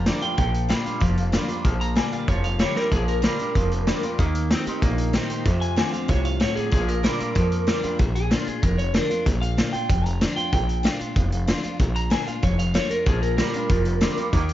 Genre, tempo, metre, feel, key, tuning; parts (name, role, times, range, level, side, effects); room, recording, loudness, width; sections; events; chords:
rockabilly; 189 BPM; 4/4; straight; Bb major; A4 = 441 Hz
electric guitar through a small old amp; melody; 0.0-14.3 s; F4 to Bb5; -28 LUFS; equal; phaser, analog delay
picked steel-string acoustic guitar; accompaniment; 0.0-14.5 s; F2 to G4; -28 LUFS; left 3 dB
twangy electric guitar; riff; 0.0-8.0, 13.1-14.5 s; F2 to C4; -30 LUFS; right 3 dB; lush chorus
upright bass; bass; 0.0-14.5 s; F1 to F2; -24 LUFS; equal
vintage drum kit; drums; 0.1-14.5 s; hi-hat, kick drum, snare drum; -24 LUFS; equal
light reverb, small room ambience; nothing above 7.6 kHz; -20 LUFS; side -13 dB against mid
0.0-8.0 A section; 8.0-14.5 A section
drum fill 2.8
0.0 Bb; 4.2 Eb; 5.5 F7; 6.7 Bb